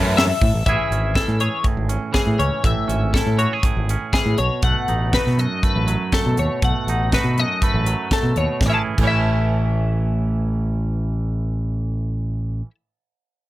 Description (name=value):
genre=math rock and midwest emo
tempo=121 BPM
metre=4/4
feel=straight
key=A lydian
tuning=A4 = 440 Hz
part: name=twelve-string electric guitar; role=arpeggios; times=0.0-12.7 s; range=G#4 to A5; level=-23 LUFS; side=left 5 dB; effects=analog chorus
part: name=growling fingered electric bass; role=bass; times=0.0-12.6 s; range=G#1 to B2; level=-21 LUFS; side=equal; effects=overdrive
part: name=crisp fusion drum kit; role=drums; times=0.2-9.1 s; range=crash cymbal, hi-hat, kick drum, snare drum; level=-22 LUFS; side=equal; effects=none
part: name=twangy electric guitar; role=accompaniment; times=0.7-12.7 s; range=F#2 to G#4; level=-25 LUFS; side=right 5 dB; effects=none
room=little or no reverb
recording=none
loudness=-18 LUFS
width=side -16 dB against mid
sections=0.7-8.6 A section; 8.6-12.6 B section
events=none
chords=0.0 Aadd9; 0.7 Amaj7; 4.4 B7; 8.6 A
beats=0.17 | 0.67 1.16 1.66 2.15 | 2.65 3.14 3.64 4.13 | 4.63 5.13 5.62 6.12 | 6.62 7.12 7.61 8.11 | 8.61 9.11 9.60 10.10 | 10.60 11.10 11.59 12.09